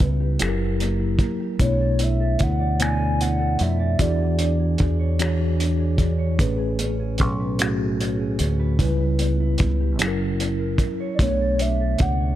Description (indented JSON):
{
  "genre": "slow six-eight R&B",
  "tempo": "50 BPM (dotted quarters)",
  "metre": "6/8",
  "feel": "straight",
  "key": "F# minor",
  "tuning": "A4 = 440 Hz",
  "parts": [
    { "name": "hollow clarinet-like synth lead", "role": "melody", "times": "0.0-4.9, 11.1-12.4 s", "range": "B4 to G#5", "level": "-28 LUFS", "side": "right 1 dB", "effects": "chorus, analog delay" },
    { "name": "mellow electric guitar", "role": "second line", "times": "0.0-12.4 s", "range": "C#3 to D5", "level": "-30 LUFS", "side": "right 4 dB", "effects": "none" },
    { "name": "mellow tine electric piano", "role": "accompaniment", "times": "0.0-12.4 s", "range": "A2 to D5", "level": "-26 LUFS", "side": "left 1 dB", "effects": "medium stereo tremolo" },
    { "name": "deep dub fingered electric bass", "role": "bass", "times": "0.0-12.4 s", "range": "F#1 to E#2", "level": "-22 LUFS", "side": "equal", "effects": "none" },
    { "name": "cloth-damped thuddy drum kit", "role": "drums", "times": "0.0-12.2 s", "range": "finger snaps, hi-hat, kick drum", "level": "-23 LUFS", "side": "equal", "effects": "none" }
  ],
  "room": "little or no reverb",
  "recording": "echo-heavy mix",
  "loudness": "-19 LUFS",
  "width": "side -13 dB against mid",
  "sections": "0.0-12.4 A section",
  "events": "none",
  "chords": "0.4 F#7b9; 1.6 Bm11; 4.0 E13; 6.4 Amaj9; 8.8 C#m7b5; 10.0 F#7; 11.2 Bm9"
}